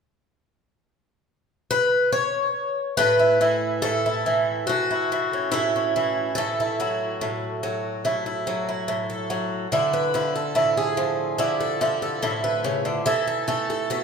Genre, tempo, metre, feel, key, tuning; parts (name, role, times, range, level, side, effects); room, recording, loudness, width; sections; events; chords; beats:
folk, solo fingerstyle acoustic guitar; 72 BPM; 4/4; straight; A major; A4 = 440 Hz
picked twelve-string acoustic guitar; solo; 1.7-14.0 s; A2 to C#5; -21 LUFS; equal
moderate recital hall reverb, RT60 1.5 s; minimal, uncompressed stereo recording; -21 LUFS; side -6 dB against mid
0.0-3.0 A section; 3.0-14.0 B section
0.0 N.C.; 3.0 A; 6.4 F#m7/A; 9.7 Dmadd9; 13.1 Esus4
0.47 1.30 2.14 | 2.98 3.83 4.68 5.53 | 6.37 7.21 8.04 8.88 | 9.72 10.55 11.39 12.23 | 13.06 13.91